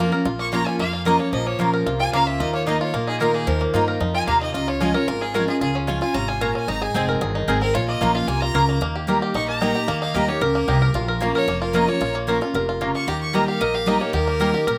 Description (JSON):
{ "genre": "bluegrass", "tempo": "225 BPM", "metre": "4/4", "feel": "straight", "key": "Bb dorian", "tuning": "A4 = 440 Hz", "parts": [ { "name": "bluegrass banjo", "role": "melody", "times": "0.0-14.8 s", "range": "F3 to Bb4", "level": "-27 LUFS", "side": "equal", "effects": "slapback echo" }, { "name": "picked steel-string acoustic guitar", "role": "accompaniment", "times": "0.0-14.8 s", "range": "F2 to Ab4", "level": "-27 LUFS", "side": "equal", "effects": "none" }, { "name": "upright bass", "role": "bass", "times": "0.0-14.8 s", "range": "F1 to G2", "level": "-29 LUFS", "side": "equal", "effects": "none" }, { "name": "bright fiddle", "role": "second line", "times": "0.4-14.8 s", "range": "Ab4 to Db6", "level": "-28 LUFS", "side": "equal", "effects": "none" }, { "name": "mandolin", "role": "stabs", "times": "0.5-14.5 s", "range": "Bb3 to Bb5", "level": "-26 LUFS", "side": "equal", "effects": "slapback echo" } ], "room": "little or no reverb", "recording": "recorded outdoors, with no room sound", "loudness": "-21 LUFS", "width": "mono", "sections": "0.3-8.8 A section; 8.8-14.8 A section", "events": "fiddle solo 0.3-14.8", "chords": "0.3 Bbm; 2.4 Ebsus2; 4.5 Db; 6.7 Ab; 7.7 Bbm; 8.8 Eb; 10.9 Bbm; 13.1 Eb" }